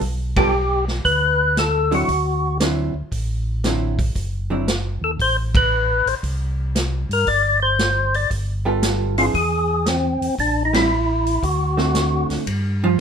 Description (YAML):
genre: soul jazz organ trio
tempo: 116 BPM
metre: 4/4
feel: swing 68% on 8ths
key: G major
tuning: A4 = 442 Hz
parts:
  - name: mellow tonewheel organ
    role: bass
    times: 0.0-13.0 s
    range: F#1 to G2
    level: -23 LUFS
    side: equal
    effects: overdrive, chorus vibrato, slow rotary speaker
  - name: vintage drum kit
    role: drums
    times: 0.0-12.6 s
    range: hi-hat, kick drum, ride cymbal, snare drum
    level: -25 LUFS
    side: right 1 dB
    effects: none
  - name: percussive tonewheel organ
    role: melody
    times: 0.4-12.3 s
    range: C4 to D5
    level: -19 LUFS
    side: left 1 dB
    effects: slow rotary speaker, overdrive
  - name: vintage hollow-body jazz guitar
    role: accompaniment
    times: 0.4-4.7, 8.7-13.0 s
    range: D3 to A4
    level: -22 LUFS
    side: right 3 dB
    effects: none
room: moderate studio reverb, RT60 0.8 s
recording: minimal, uncompressed stereo recording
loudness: -17 LUFS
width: side -7 dB against mid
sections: 0.0-12.5 A section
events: band accent 0.3, 5.4, 10.6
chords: 0.0 Gadd9; 2.1 D9; 6.2 C5; 8.3 G9; 9.3 E; 10.4 Am7; 11.4 D7; 12.5 G7(no3)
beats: | 0.01 0.53 1.05 1.56 | 2.08 2.60 3.12 3.63 | 4.15 4.67 5.19 5.71 | 6.23 6.75 7.26 7.79 | 8.30 8.82 9.34 9.86 | 10.38 10.90 11.43 11.95 | 12.46 12.98